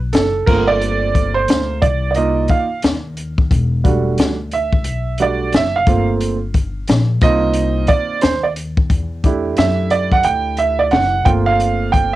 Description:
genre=hip hop, jazz-hop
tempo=89 BPM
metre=4/4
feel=swing 62% on 16ths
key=unclear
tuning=A4 = 440 Hz
part: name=upright bass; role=bass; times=0.0-12.2 s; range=E1 to F#2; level=-20 LUFS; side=left 2 dB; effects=transformer saturation
part: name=warm upright piano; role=accompaniment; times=0.1-12.2 s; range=G3 to G5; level=-16 LUFS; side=right 4 dB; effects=cassette tape
part: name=open jazz drum kit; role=drums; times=0.1-12.1 s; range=crash cymbal, hi-hat, kick drum, snare drum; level=-16 LUFS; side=left 2 dB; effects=cassette tape
room=light reverb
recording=home recording on cassette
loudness=-14 LUFS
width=side -15 dB against mid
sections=0.0-12.2 A section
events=upright piano solo 0.0-12.2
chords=0.5 Gm11; 1.8 Cm11; 3.5 Em11; 5.9 Gm11; 7.2 Cm7; 8.9 Em11; 11.3 Gm11

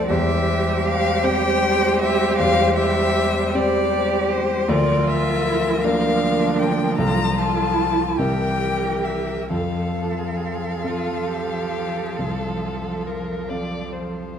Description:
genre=classical, slow romantic movement for piano quintet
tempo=44-53 BPM (dotted quarters)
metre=12/8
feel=rubato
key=F major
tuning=A4 = 439 Hz
part: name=warm violin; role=melody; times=0.0-14.3 s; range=C5 to Bb5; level=-24 LUFS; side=left 6 dB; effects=none
part: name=dark violin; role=second line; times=0.0-14.4 s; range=F4 to D5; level=-28 LUFS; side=left 4 dB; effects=none
part: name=rich cello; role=second line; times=0.0-14.1 s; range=D4 to A4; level=-26 LUFS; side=right 7 dB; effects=none
part: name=dark grand piano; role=accompaniment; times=0.0-14.4 s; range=C2 to F5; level=-24 LUFS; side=equal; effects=none
part: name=rich viola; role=accompaniment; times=0.0-14.4 s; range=E3 to G3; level=-26 LUFS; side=right 3 dB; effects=none
room=wet recital hall reverb, RT60 1.4 s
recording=dark, warm production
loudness=-18 LUFS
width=side -8 dB against mid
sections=0.0-14.4 A section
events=none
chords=0.1 C/E; 4.7 Bb/D; 7.0 F/C; 8.2 C7; 9.5 F

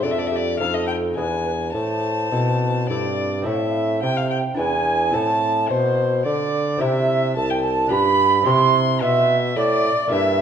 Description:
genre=classical, baroque-style sonata movement with continuo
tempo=108 BPM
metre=3/4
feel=straight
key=A minor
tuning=A4 = 440 Hz
part: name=dark violin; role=melody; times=0.0-10.4 s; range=C5 to C6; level=-25 LUFS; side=left 6 dB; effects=none
part: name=baroque flute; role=second line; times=0.0-10.4 s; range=G4 to C6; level=-22 LUFS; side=right 5 dB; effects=none
part: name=lute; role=accompaniment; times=0.0-10.4 s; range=E2 to B4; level=-26 LUFS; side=equal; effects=none
part: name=warm bassoon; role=bass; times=0.0-10.4 s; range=C2 to D3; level=-23 LUFS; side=right 1 dB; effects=none
room=wet recital hall reverb, RT60 1.3 s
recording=dark, warm production, nothing above 10.5 kHz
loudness=-18 LUFS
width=side -8 dB against mid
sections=0.0-3.5 A section; 3.5-10.4 B section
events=none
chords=0.0 Dm/F; 0.6 F7; 1.2 E7; 1.7 Am; 4.6 E7; 5.1 Am; 6.8 C; 7.9 G7; 8.5 C

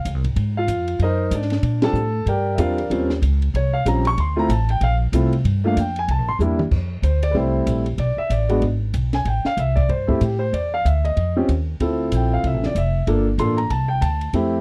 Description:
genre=jazz piano trio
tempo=189 BPM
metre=4/4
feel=swing 61% on 8ths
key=F major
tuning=A4 = 440 Hz
part: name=warm concert grand piano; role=melody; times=0.0-14.6 s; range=G3 to Db6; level=-24 LUFS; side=equal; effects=none
part: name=upright bass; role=bass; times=0.0-14.6 s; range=F1 to Bb2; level=-23 LUFS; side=equal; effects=none
part: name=compact cocktail drum kit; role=drums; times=0.1-14.4 s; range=crash cymbal, hi-hat, kick drum, ride cymbal, snare drum, toms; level=-29 LUFS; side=equal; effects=none
room=little or no reverb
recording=dry, close 1970s-style studio recording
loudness=-20 LUFS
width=mono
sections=0.0-6.7 A section; 6.7-14.6 B section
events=band accent 1.8; drum fill 6.4-6.7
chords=0.4 Ab9; 1.6 Bb6; 2.9 Eb13; 4.2 Dm7; 5.4 G7(no3); 6.1 C7; 6.7 Fmaj9; 8.0 G#dim; 9.3 Am7; 10.5 Dsus2; 11.2 Ebsus2; 11.8 Dm9; 13.1 Gm9; 13.7 Csus2

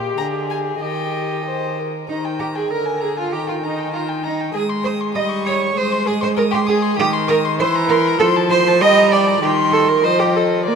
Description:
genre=quick classical-period movement for string quartet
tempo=98 BPM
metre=2/4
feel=rubato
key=Eb major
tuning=A4 = 441 Hz
part: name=warm violin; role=second line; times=0.0-10.8 s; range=G4 to Eb6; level=-23 LUFS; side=left 4 dB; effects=none
part: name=warm viola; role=accompaniment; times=0.0-10.8 s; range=D3 to Eb5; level=-20 LUFS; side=equal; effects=none
part: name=rich cello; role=bass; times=0.0-10.8 s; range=Bb2 to Eb5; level=-19 LUFS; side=right 7 dB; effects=none
part: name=rich violin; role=melody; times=0.2-10.8 s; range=Eb4 to Bb5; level=-24 LUFS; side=left 8 dB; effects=none
room=wet cathedral reverb, RT60 6.5 s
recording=in a vast, echoing space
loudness=-15 LUFS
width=side -6 dB against mid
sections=0.0-2.1 A section; 2.1-10.8 A section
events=none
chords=0.2 Bb7/D (rootless); 0.8 Eb; 2.7 Bb7/D; 3.3 Eb; 4.6 Ab; 5.2 Eb7/G; 5.8 Ab; 7.0 Cm/Eb; 7.6 C7/E; 8.2 F; 8.8 Gm; 9.4 Cm/Eb; 10.0 F7

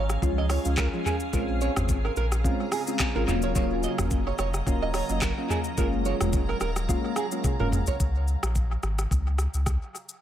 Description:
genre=afrobeats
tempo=108 BPM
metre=4/4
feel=swing 55% on 16ths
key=unclear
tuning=A4 = 440 Hz
part: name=granular cloud pad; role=sustained chords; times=0.0-8.0 s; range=Db3 to Bb5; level=-36 LUFS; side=right 1 dB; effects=built-in reverb
part: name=flamenco guitar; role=riff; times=0.0-7.9 s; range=Ab4 to Eb5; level=-33 LUFS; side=right 7 dB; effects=dub echo
part: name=warm sub bass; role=bass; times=0.0-9.8 s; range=Eb1 to Db2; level=-28 LUFS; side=equal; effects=none
part: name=afro-pop drum kit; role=drums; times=0.1-10.2 s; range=handclaps, hi-hat, kick drum, rim click, shaker, toms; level=-28 LUFS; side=equal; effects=dub echo
part: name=soft electric-piano-like synth keys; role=accompaniment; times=0.2-7.8 s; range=F3 to F4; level=-30 LUFS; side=equal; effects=chorus, phaser, dub echo
room=light reverb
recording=echo-heavy mix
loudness=-24 LUFS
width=side -11 dB against mid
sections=0.0-8.0 A section; 8.0-10.2 B section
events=drum fill 7.4-8.0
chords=0.0 Db; 1.3 Bbm7; 3.3 Ebm7; 5.8 Gbmaj7; 8.0 Db5

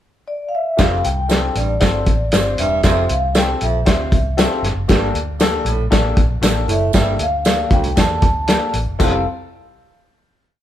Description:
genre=uptempo 1960s-style soul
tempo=117 BPM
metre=4/4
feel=straight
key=F major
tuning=A4 = 440 Hz
part: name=vibraphone with soft mallets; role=melody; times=0.3-9.2 s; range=D5 to A5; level=-21 LUFS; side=equal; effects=none
part: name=warm baby grand piano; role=accompaniment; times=0.8-9.2 s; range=Bb3 to C5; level=-23 LUFS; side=left 4 dB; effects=none
part: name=breathy baritone saxophone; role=riff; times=0.8-9.2 s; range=C2 to A2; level=-25 LUFS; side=right 5 dB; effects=none
part: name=vintage muted fingered electric bass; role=bass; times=0.8-9.2 s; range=E1 to E2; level=-21 LUFS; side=equal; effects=none
part: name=warm soul drum kit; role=drums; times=0.8-9.1 s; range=crash cymbal, hi-hat, kick drum, snare drum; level=-16 LUFS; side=equal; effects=none
part: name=tambourine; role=percussion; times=0.8-9.2 s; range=none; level=-31 LUFS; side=right 7 dB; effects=none
room=light reverb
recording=band playing live in one room, lossy compression artefacts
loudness=-14 LUFS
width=side -11 dB against mid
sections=0.0-0.8 pickup bar; 0.8-9.0 verse; 9.0-10.6 final chord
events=none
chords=0.0 N.C.; 0.8 Fadd9; 4.9 Gmadd9; 9.0 Fadd9

